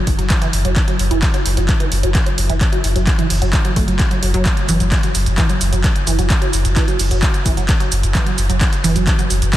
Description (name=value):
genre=driving peak-time techno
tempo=130 BPM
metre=4/4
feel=straight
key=unclear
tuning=A4 = 441 Hz
part: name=resonant blip pluck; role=riff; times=0.0-9.6 s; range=E3 to A3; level=-22 LUFS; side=right 1 dB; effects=phaser, sidechain pumping, ping-pong delay
part: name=saturated sub bass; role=bass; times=0.1-9.5 s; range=F#1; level=-19 LUFS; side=equal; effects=sidechain pumping, low-pass filter
part: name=dusty soul sampler-style drum kit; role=drums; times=0.1-9.6 s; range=hi-hat, snare drum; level=-34 LUFS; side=right 2 dB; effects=none
part: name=electronic kick drum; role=drums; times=0.1-9.6 s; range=none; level=-16 LUFS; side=equal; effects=none
part: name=punchy analog drum machine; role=drums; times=0.1-9.6 s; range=handclaps, hi-hat, shaker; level=-21 LUFS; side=right 1 dB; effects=sidechain pumping on hats, sidechain pumping on cymbals, sidechain pumping on perc
room=light reverb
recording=none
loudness=-14 LUFS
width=side -14 dB against mid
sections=0.0-9.6 A section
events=none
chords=none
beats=0.30 | 0.76 1.23 1.69 2.15 | 2.61 3.07 3.53 4.00 | 4.46 4.92 5.38 5.84 | 6.30 6.76 7.23 7.69 | 8.15 8.61 9.07 9.53